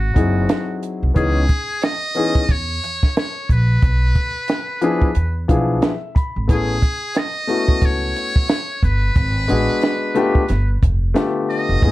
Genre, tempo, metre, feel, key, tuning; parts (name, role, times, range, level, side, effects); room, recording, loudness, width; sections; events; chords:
hip hop, jazz-hop; 90 BPM; 4/4; swing 59% on 16ths; A4 = 440 Hz
trumpet with metal mute; melody; 0.0-11.9 s; F#4 to D#5; -24 LUFS; equal
upright bass; bass; 0.0-11.9 s; F1 to E2; -18 LUFS; equal
warm grand piano; accompaniment; 0.1-11.9 s; D3 to B5; -20 LUFS; left 3 dB
compact cocktail drum kit; drums; 0.2-11.9 s; hi-hat, kick drum, snare drum; -17 LUFS; right 1 dB
light reverb; -16 LUFS; side -17 dB against mid
0.0-11.9 A section
grand piano fill 5.2-6.5
0.0 G#7b13; 1.2 C#m9; 3.8 Bm; 5.2 E7b9; 6.5 Amaj9; 9.2 G#m7b5; 10.5 G9